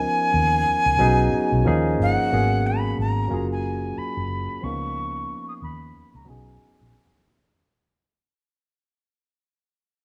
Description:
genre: R&B, neo-soul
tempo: 91 BPM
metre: 4/4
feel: swing 58% on 16ths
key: unclear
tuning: A4 = 441 Hz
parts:
  - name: breathy bright jazz flute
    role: melody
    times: 0.0-7.3 s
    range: F#5 to D#6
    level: -26 LUFS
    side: equal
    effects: low-pass filter
  - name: barky tine electric piano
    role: accompaniment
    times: 0.0-7.6 s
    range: E#3 to A#4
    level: -28 LUFS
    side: equal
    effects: overdrive, low-pass filter
  - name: vintage muted fingered electric bass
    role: bass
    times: 0.3-6.9 s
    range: F#1 to D#2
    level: -27 LUFS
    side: equal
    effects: none
room: light reverb, small room ambience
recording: rough home demo mix, studio reverb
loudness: -22 LUFS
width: mono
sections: 0.0-2.3 A section; 2.3-7.6 B section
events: fade-out 2.3-7.6; filter sweep 2.3-7.6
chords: 0.0 C#13; 1.0 B69; 1.6 D#9sus4; 2.3 G#m11; 3.3 F#maj9; 4.6 C#13; 6.3 B69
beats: 0.33 0.98 1.65 | 2.30 2.96 3.62 4.28 | 4.94 5.60 6.26 6.92

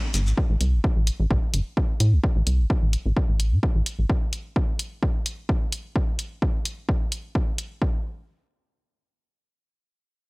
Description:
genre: minimal techno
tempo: 129 BPM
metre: 4/4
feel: swing 54% on 16ths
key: A minor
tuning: A4 = 439 Hz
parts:
  - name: rubbery square bass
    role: bass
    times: 0.1-4.1 s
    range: G1 to A2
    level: -21 LUFS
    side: equal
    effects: sidechain pumping
  - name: electronic hi-hat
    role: drums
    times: 0.1-7.7 s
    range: none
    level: -30 LUFS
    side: equal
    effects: none
  - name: electronic kick drum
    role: drums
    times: 0.4-7.9 s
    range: none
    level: -23 LUFS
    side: equal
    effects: none
room: digital ambience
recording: dry, gritty hardware recording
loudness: -22 LUFS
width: side -29 dB against mid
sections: 0.0-7.8 A section; 7.8-10.3 B section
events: none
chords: none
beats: | 0.37 0.84 1.30 1.77 | 2.23 2.70 3.16 3.63 | 4.09 4.56 5.02 5.49 | 5.96 6.42 6.88 7.35 | 7.82

